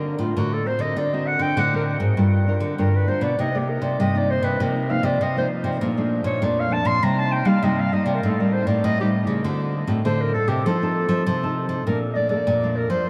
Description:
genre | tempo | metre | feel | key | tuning
samba and choro | 99 BPM | 4/4 | straight | unclear | A4 = 440 Hz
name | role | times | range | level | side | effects
nylon-string guitar | accompaniment | 0.0-13.1 s | F2 to Bb4 | -27 LUFS | equal | subtle chorus
nylon-string guitar | bass | 0.0-13.1 s | G2 to Bb3 | -26 LUFS | equal | none
warm clarinet | melody | 0.2-13.1 s | F4 to C6 | -27 LUFS | equal | tape echo
room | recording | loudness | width
wet huge ambient reverb, RT60 7.6 s | dreamy mix soaked in reverb | -22 LUFS | mono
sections
0.0-11.9 A section; 11.9-13.1 B section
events
clarinet solo 0.0-11.9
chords
0.0 D7b13; 2.2 Gm7; 3.4 Cm7; 4.6 F7sus4/C; 5.8 Bbmaj7; 7.0 Cm7; 8.2 Am7b5; 9.4 D7; 10.7 F7; 11.9 Bbmaj7

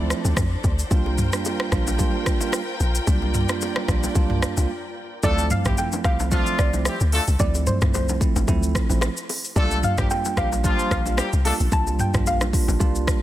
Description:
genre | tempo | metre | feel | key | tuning
afrobeats | 111 BPM | 4/4 | swing 55% on 16ths | D minor | A4 = 440 Hz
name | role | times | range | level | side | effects
bell-like tine electric piano | accompaniment | 0.0-13.2 s | F3 to E5 | -28 LUFS | right 6 dB | none
dark studio string section | sustained chords | 0.0-5.2 s | D4 to G5 | -31 LUFS | left 2 dB | sidechain pumping
deep log drum bass | bass | 0.0-13.1 s | A1 to F2 | -23 LUFS | equal | none
afro-pop drum kit | drums | 0.1-13.2 s | hi-hat, kick drum, rim click, shaker, toms | -23 LUFS | equal | none
bongos and congas | percussion | 0.2-12.9 s | none | -33 LUFS | left 5 dB | none
soft round pluck | melody | 5.2-13.2 s | C5 to A5 | -28 LUFS | equal | chorus, digital delay
mellow horn section | second line | 5.2-11.5 s | F3 to A4 | -27 LUFS | left 2 dB | none
room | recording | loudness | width
light reverb | dense, heavily limited modern master | -19 LUFS | side -14 dB against mid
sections
0.0-5.2 A section; 5.2-13.2 B section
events
break 4.7-5.2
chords
0.0 Dm7; 0.9 C7sus4; 5.2 Dm7; 9.6 C7sus4

